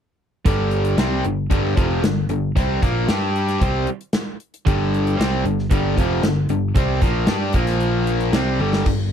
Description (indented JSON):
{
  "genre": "classic rock",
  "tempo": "114 BPM",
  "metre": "4/4",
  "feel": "straight",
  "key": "G minor",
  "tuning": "A4 = 439 Hz",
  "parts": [
    { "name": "distorted electric guitar", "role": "riff", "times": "0.5-9.1 s", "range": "F2 to G4", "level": "-23 LUFS", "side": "left 14 dB", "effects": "overdrive" },
    { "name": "raw garage guitar", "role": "riff", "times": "0.5-8.9 s", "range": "F2 to G4", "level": "-24 LUFS", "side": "right 12 dB", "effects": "overdrive" },
    { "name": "picked electric bass", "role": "bass", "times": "0.5-9.1 s", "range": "F1 to G2", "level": "-23 LUFS", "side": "equal", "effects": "none" },
    { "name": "gated 80s drum kit", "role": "drums", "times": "0.5-9.0 s", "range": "crash cymbal, hi-hat, kick drum, snare drum, toms", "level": "-21 LUFS", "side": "equal", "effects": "none" }
  ],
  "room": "little or no reverb",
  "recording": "none",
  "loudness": "-17 LUFS",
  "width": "side -8 dB against mid",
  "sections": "0.5-8.9 A section",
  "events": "drum fill 8.6",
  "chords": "0.5 Gm; 7.5 Bb5; 8.3 G5"
}